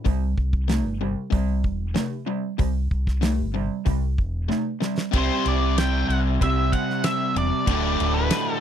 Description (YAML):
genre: classic rock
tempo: 95 BPM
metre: 4/4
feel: straight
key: unclear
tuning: A4 = 440 Hz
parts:
  - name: crunchy overdriven guitar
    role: riff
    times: 0.0-8.6 s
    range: D2 to C5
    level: -28 LUFS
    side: left 14 dB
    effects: none
  - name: raw garage guitar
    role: riff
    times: 0.0-8.6 s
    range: D2 to C4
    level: -28 LUFS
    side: right 16 dB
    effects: overdrive
  - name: fingered electric bass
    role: bass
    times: 0.1-8.3 s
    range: D1 to C2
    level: -24 LUFS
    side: equal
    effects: none
  - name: damped 70s drum kit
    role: drums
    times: 0.1-8.5 s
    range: hi-hat, kick drum, ride cymbal, snare drum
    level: -24 LUFS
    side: equal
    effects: none
  - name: octave-fuzz lead guitar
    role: melody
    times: 5.2-8.6 s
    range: B4 to G5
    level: -26 LUFS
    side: equal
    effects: distortion
room: little or no reverb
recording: dry, close 1970s-style studio recording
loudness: -21 LUFS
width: side -9 dB against mid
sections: 0.0-5.1 A section; 5.1-8.6 B section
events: drum fill 4.5-5.1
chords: 0.1 C5; 5.1 C; 7.7 Dsus4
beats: | 0.06 0.69 1.33 1.96 | 2.60 3.23 3.86 4.50 | 5.13 5.77 6.40 7.04 | 7.67 8.30